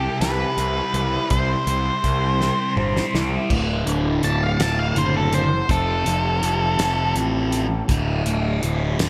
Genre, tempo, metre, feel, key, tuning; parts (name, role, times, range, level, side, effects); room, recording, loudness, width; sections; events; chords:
psychedelic rock; 55 BPM (dotted quarters); 6/8; straight; A4 = 441 Hz
octave-fuzz lead guitar; melody; 0.0-7.1 s; A4 to A5; -27 LUFS; equal; distortion, analog delay
thick fuzz guitar; riff; 0.0-9.1 s; D2 to C5; -26 LUFS; equal; distortion, phaser
fuzz picked electric bass; bass; 0.0-9.1 s; D1 to C2; -26 LUFS; equal; overdrive
damped 70s drum kit; drums; 0.2-9.1 s; crash cymbal, hi-hat, kick drum, snare drum, toms; -28 LUFS; equal
moderate church reverb, RT60 3.5 s; dreamy mix soaked in reverb; -21 LUFS; mono
0.0-3.5 A section; 3.5-9.1 B section
drum fill 2.4-3.5; lead electric guitar solo 3.5-9.1
0.0 C; 3.5 D; 5.7 F; 7.9 D5